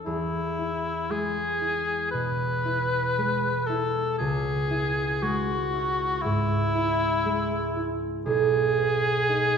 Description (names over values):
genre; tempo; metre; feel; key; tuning
classical, romantic duo for cor anglais and harp; 58 BPM; 4/4; rubato; E major; A4 = 440 Hz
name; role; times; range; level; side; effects
concert harp; accompaniment; 0.0-9.6 s; B1 to E4; -27 LUFS; right 2 dB; none
warm cor anglais; melody; 0.1-9.6 s; E4 to B4; -26 LUFS; left 2 dB; none
room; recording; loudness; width
wet recital hall reverb, RT60 1.4 s; heard from further back in the room; -23 LUFS; side -6 dB against mid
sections
0.0-9.6 A section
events
none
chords
0.1 E; 4.2 C#m; 8.3 G#m/B